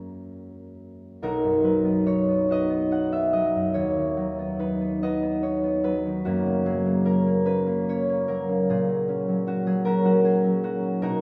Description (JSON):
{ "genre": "classical, solo harp piece", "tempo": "43-52 BPM (dotted quarters)", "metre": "6/8", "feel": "rubato", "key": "B major", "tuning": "A4 = 441 Hz", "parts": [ { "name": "concert harp", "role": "solo", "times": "0.0-11.2 s", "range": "B1 to A#5", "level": "-24 LUFS", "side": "equal", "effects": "none" } ], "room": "wet church reverb, RT60 3.6 s", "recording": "none", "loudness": "-24 LUFS", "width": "mono", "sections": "0.0-1.2 A section; 1.2-11.2 B section", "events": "none", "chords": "0.0 F#; 1.2 B; 3.7 B/D#; 6.2 F#; 8.7 F#/A#", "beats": "| 1.21 2.46 | 3.72 5.00 | 6.24 7.44 | 8.67 9.84 | 11.02" }